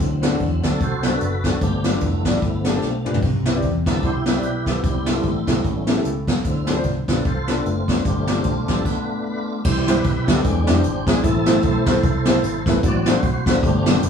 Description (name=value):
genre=uptempo gospel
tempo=150 BPM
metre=4/4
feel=swing 58% on 8ths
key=C major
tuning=A4 = 441 Hz
part: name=warm upright piano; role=accompaniment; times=0.0-14.1 s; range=G2 to D5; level=-24 LUFS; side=left 4 dB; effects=none
part: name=tonewheel organ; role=sustained chords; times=0.0-14.1 s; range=D3 to D5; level=-25 LUFS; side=right 2 dB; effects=slow rotary speaker, overdrive, chorus vibrato
part: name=fingered electric bass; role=bass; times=0.0-14.1 s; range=F1 to F2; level=-24 LUFS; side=equal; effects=none
part: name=jazz brush drum kit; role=drums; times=0.0-14.1 s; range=crash cymbal, hi-hat, kick drum, snare drum, splash cymbal, toms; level=-20 LUFS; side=equal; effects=none
room=light reverb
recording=band playing live in one room, studio ambience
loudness=-17 LUFS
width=side -7 dB against mid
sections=0.0-9.6 A section; 9.6-14.1 B section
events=tonewheel organ solo 0.0-9.6, 9.6-14.1; drum fill 2.8-3.2; stop 8.8-9.6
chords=0.0 D7; 1.6 G7; 3.2 Cmaj7; 4.8 Am7/C; 5.6 A7; 6.4 Dm7; 8.0 G7sus4; 8.8 Bm7b5/A; 9.6 C; 10.4 E7alt; 11.2 Am; 12.8 D7/A